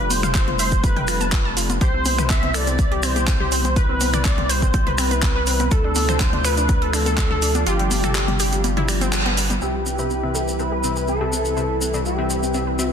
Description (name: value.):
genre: progressive house.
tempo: 123 BPM.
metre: 4/4.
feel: straight.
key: C major.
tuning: A4 = 436 Hz.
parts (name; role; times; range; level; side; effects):
expressive synth lead; melody; 0.0-12.9 s; G4 to E5; -24 LUFS; equal; ensemble chorus, sidechain pumping, tape echo.
lush unison pad; sustained chords; 0.0-12.9 s; B2 to B4; -28 LUFS; equal; chorus, sidechain pumping.
wide unison pluck; arpeggios; 0.0-12.9 s; G3 to A5; -28 LUFS; equal; sidechain pumping, tape echo.
round analog bass; bass; 0.0-12.9 s; F1 to D2; -24 LUFS; equal; sidechain pumping.
house drum kit; drums; 0.1-12.9 s; finger snaps, handclaps, hi-hat; -26 LUFS; right 1 dB; low-pass filter on hats, soft clipping on snare, low-pass filter on snare, low-pass filter on room.
electronic congas and toms; percussion; 0.1-9.6 s; none; -29 LUFS; left 5 dB; sidechain pumping on perc, sidechain pumping on toms.
maracas; percussion; 0.1-12.9 s; none; -30 LUFS; left 2 dB; none.
electronic kick drum; drums; 0.3-7.3 s; none; -20 LUFS; equal; none.
supersaw stab; stabs; 9.6-12.9 s; C3 to E5; -27 LUFS; left 3 dB; cassette tape, sidechain pumping, low-pass filter, tape echo.
room: light reverb, digital ambience.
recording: dense, heavily limited modern master.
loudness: -17 LUFS.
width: side -8 dB against mid.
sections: 0.0-9.6 A section; 9.6-12.9 B section.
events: filter sweep on analog synth pad 0.0-9.6; kick drops out 7.7-9.6; band accent 9.1; filter sweep on supersaw synth 9.6-12.9.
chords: 0.0 F69; 1.8 Cmaj7; 5.7 Dm7; 7.7 G7sus4; 9.6 Cmaj7.